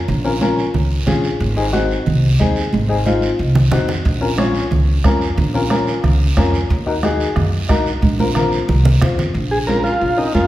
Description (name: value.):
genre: latin, cumbia.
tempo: 181 BPM.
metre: 4/4.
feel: straight.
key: Bb minor.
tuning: A4 = 441 Hz.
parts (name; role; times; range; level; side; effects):
upright bass; bass; 0.1-10.5 s; Ab1 to Gb2; -18 LUFS; equal; none.
congas; percussion; 0.1-10.5 s; none; -21 LUFS; right 3 dB; none.
guiro; percussion; 0.1-10.5 s; none; -30 LUFS; right 4 dB; none.
warm upright piano; accompaniment; 0.2-10.4 s; C4 to Db5; -20 LUFS; left 3 dB; none.
bombo; percussion; 4.1-9.2 s; none; -21 LUFS; right 1 dB; none.
combo organ; melody; 9.5-10.5 s; Eb4 to Bb4; -17 LUFS; equal; slapback echo.
room: wet recital hall reverb, RT60 1.6 s.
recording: heard from further back in the room.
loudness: -14 LUFS.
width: side -14 dB against mid.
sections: 0.0-9.3 A section; 9.3-10.5 B section.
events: drum fill 2.7-4.1, 8.0-9.3.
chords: 0.0 Bbm; 1.4 Ab; 4.1 Bbm; 6.7 Ebm; 8.0 Bbsus2; 9.3 Bbm.